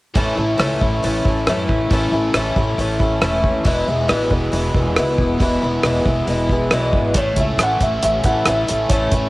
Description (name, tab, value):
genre	folk rock and heartland rock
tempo	137 BPM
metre	4/4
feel	straight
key	unclear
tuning	A4 = 438 Hz
part	biting overdriven guitar	riff	0.1-9.3 s	E2 to E4	-25 LUFS	right 1 dB	none
part	picked twelve-string acoustic guitar	accompaniment	0.2-9.3 s	E2 to E4	-20 LUFS	left 1 dB	none
part	upright bass	bass	0.2-9.3 s	E1 to F#2	-23 LUFS	equal	none
part	cloth-damped thuddy drum kit	drums	0.2-9.2 s	hi-hat, kick drum, rim click	-20 LUFS	equal	cassette tape
part	felt-muted upright piano	melody	7.2-9.3 s	C#5 to F#5	-20 LUFS	equal	cassette tape, tape echo
room	light reverb, small room ambience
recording	home recording on cassette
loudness	-15 LUFS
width	side -20 dB against mid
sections	0.2-7.2 A section; 7.2-9.3 B section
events	none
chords	0.2 A; 3.7 E; 7.2 A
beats	| 0.16 0.60 1.03 1.47 | 1.91 2.35 2.79 3.22 | 3.66 4.10 4.53 4.97 | 5.41 5.85 6.28 6.72 | 7.16 7.60 8.03 8.47 | 8.91